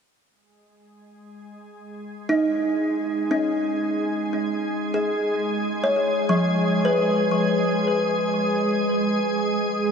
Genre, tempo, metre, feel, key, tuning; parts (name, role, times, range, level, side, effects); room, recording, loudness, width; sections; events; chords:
ambient; free time; G# dorian; A4 = 440 Hz
organ-like drone; drone; 1.3-9.9 s; G#3 to G#4; -24 LUFS; equal; ensemble chorus, built-in reverb
kalimba; arpeggios; 2.3-9.9 s; E#3 to C#5; -23 LUFS; equal; ping-pong delay
wet huge ambient reverb, RT60 7.2 s; cassette tape; -20 LUFS; side -6 dB against mid
0.3-9.9 A section
0.3 G#m